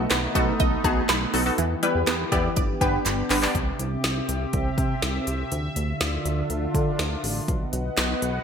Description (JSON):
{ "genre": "synth-pop", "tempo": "122 BPM", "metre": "4/4", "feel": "straight", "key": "unclear", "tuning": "A4 = 444 Hz", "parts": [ { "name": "funky polysynth comp", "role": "accompaniment", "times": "0.0-3.5 s", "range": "B3 to D5", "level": "-26 LUFS", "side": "equal", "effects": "chorus" }, { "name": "sweeping resonant pad", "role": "sustained chords", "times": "0.0-8.4 s", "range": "C3 to F#5", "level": "-28 LUFS", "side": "equal", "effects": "chorus" }, { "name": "resonant blip pluck", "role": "arpeggios", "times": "0.0-3.5 s", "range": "E3 to G6", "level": "-29 LUFS", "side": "right 2 dB", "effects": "phaser, ping-pong delay" }, { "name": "chorused synth bass", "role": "bass", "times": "0.0-8.4 s", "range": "G1 to D3", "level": "-28 LUFS", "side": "equal", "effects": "none" }, { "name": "deep house drum kit", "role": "drums", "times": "0.1-8.3 s", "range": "handclaps, hi-hat, kick drum, snare drum", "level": "-26 LUFS", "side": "equal", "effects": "gated reverb" } ], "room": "moderate plate reverb, RT60 1.6 s", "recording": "bright 1980s-style digital production", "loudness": "-22 LUFS", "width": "side -7 dB against mid", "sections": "0.0-3.5 A section; 3.5-8.4 B section", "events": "drum fill 3.1-3.5", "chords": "0.0 B7; 1.6 Em; 2.6 G; 3.5 C; 5.5 Dmadd9; 7.5 B" }